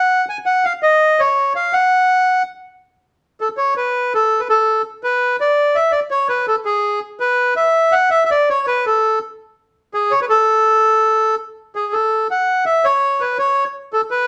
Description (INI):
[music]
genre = tango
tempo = 165 BPM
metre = 3/4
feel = rubato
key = unclear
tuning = A4 = 440 Hz
[part]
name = bandoneon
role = solo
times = 0.0-14.3 s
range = G#4 to G#5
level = -16 LUFS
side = equal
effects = none
[sound]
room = wet studio reverb, RT60 0.8 s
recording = none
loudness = -16 LUFS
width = mono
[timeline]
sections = 0.0-2.8 A section; 2.8-11.6 B section; 11.6-14.3 C section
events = none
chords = none